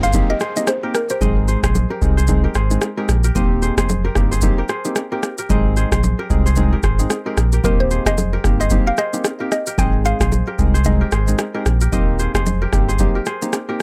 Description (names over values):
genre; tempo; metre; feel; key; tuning
afrobeats; 112 BPM; 4/4; swing 58% on 16ths; Eb major; A4 = 440 Hz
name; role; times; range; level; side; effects
mallet-like synth pluck; melody; 0.0-2.1, 7.6-11.6 s; Bb4 to G5; -25 LUFS; equal; chorus
soft electric-piano-like synth keys; accompaniment; 0.0-13.8 s; Ab3 to Ab4; -26 LUFS; equal; chorus
kora; riff; 0.0-13.8 s; G4 to Eb5; -29 LUFS; equal; digital delay
sub bass with octave; bass; 0.0-13.1 s; Eb1 to C2; -20 LUFS; equal; none
booming analog drum machine; drums; 0.0-13.8 s; kick drum, rim click, shaker; -22 LUFS; equal; none
downlifter; sound effects; 0.0-3.4 s; none; -44 LUFS; equal; none
bongos and congas; percussion; 0.1-13.7 s; none; -28 LUFS; equal; none
room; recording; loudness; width
little or no reverb; none; -18 LUFS; mono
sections
0.0-13.8 A section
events
none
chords
0.0 Eb6; 1.2 Ab; 3.4 Eb6; 5.5 Ab; 7.6 Eb6; 9.8 Ab; 11.9 Eb6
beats
0.14 0.68 | 1.21 1.75 2.28 2.82 | 3.35 3.89 4.43 4.96 | 5.50 6.03 6.57 7.10 | 7.64 8.18 8.71 9.25 | 9.78 10.32 10.85 11.39 | 11.93 12.46 13.00 13.53